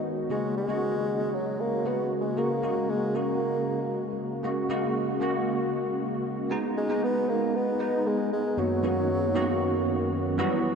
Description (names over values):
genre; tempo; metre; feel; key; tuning
pop; 116 BPM; 4/4; straight; unclear; A4 = 440 Hz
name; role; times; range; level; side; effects
dark bassoon; melody; 0.0-10.1 s; F#3 to B3; -30 LUFS; equal; tape echo
bell-like tine electric piano; accompaniment; 0.0-10.8 s; F#2 to F#4; -27 LUFS; right 1 dB; ensemble chorus
room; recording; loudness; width
wet huge ambient reverb, RT60 8.5 s; dreamy mix soaked in reverb; -25 LUFS; side -6 dB against mid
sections
0.0-4.4 A section; 4.4-6.5 B section; 6.5-10.8 C section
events
none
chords
0.3 F#add9; 6.5 G#m; 8.6 Bmaj7/F#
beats
| 0.30 0.81 1.33 1.85 | 2.37 2.88 3.40 3.92 | 4.44 4.95 5.47 5.99 | 6.50 7.02 7.54 8.06 | 8.57 9.09 9.61 10.13 | 10.64